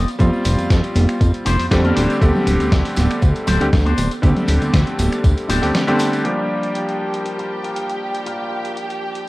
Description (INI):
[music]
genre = nu-disco, nu disco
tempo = 119 BPM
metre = 4/4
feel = straight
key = G minor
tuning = A4 = 440 Hz
[part]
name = electric guitar with an envelope filter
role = riff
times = 0.0-9.3 s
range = D4 to C5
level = -28 LUFS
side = left 4 dB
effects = wide subtle chorus, low-pass filter, cassette tape, analog delay
[part]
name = fat analog bass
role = bass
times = 0.0-5.7 s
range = D1 to F2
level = -17 LUFS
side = equal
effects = tube saturation
[part]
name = dusty soul sampler-style drum kit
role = drums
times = 0.1-9.2 s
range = finger snaps, hi-hat, snare drum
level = -26 LUFS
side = equal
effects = studio reverb
[part]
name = tambourine and congas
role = percussion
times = 0.1-6.2 s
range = none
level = -24 LUFS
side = right 2 dB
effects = none
[part]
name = bright electric grand piano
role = accompaniment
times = 0.2-9.3 s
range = D3 to G4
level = -21 LUFS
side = equal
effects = sidechain pumping, low-pass filter, cassette tape, analog delay
[part]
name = electronic kick drum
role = drums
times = 0.2-5.3 s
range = none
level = -16 LUFS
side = equal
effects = studio reverb
[part]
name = rich studio string section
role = sustained chords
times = 6.2-9.3 s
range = G4 to G5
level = -27 LUFS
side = right 2 dB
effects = sidechain pumping, cassette tape
[sound]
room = light reverb, digital ambience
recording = home recording on cassette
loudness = -15 LUFS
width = side -19 dB against mid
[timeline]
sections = 0.0-6.2 A section; 6.2-9.3 B section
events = filter sweep on electric grand piano 6.2-9.3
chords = 0.0 Fsus2; 2.0 D7sus4; 6.2 Gm7